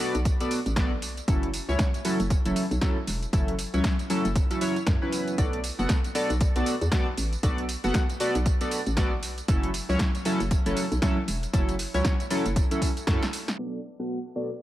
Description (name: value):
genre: deep house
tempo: 117 BPM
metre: 4/4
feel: swing 59% on 16ths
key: B minor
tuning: A4 = 442 Hz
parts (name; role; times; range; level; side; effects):
- chorused polysynth; stabs; 0.0-14.5 s; F#3 to F#5; -28 LUFS; equal; sidechain pumping, dub echo
- deep house drum kit; drums; 0.0-14.6 s; hi-hat, snare drum, tambourine; -33 LUFS; equal; overdrive, low-pass filter on toms, low-pass filter on hats, low-pass filter on cymbals, low-pass filter on perc, low-pass filter on snare, low-pass filter on room
- hollow knocking FM bass; bass; 0.1-13.2 s; E1 to F#2; -29 LUFS; equal; sidechain pumping
- electronic kick drum; drums; 0.3-13.2 s; none; -25 LUFS; equal; overdrive
room: light reverb, digital ambience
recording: vinyl crackle, low-pass filter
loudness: -24 LUFS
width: side -14 dB against mid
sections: 0.0-13.6 A section; 13.6-14.6 B section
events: drum fill 13.2-13.6; filter sweep on analog polysynth 13.6-14.6; filter sweep 13.6-14.6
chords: 0.0 Bm7; 1.3 F#m7; 5.4 Bm7; 9.5 F#m7; 13.6 Bm7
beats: 0.25 0.77 | 1.28 1.79 2.30 2.82 | 3.33 3.84 4.36 4.87 | 5.38 5.89 6.41 6.92 | 7.43 7.95 8.46 8.97 | 9.48 10.00 10.51 11.02 | 11.54 12.05 12.56 13.07 | 13.59 14.10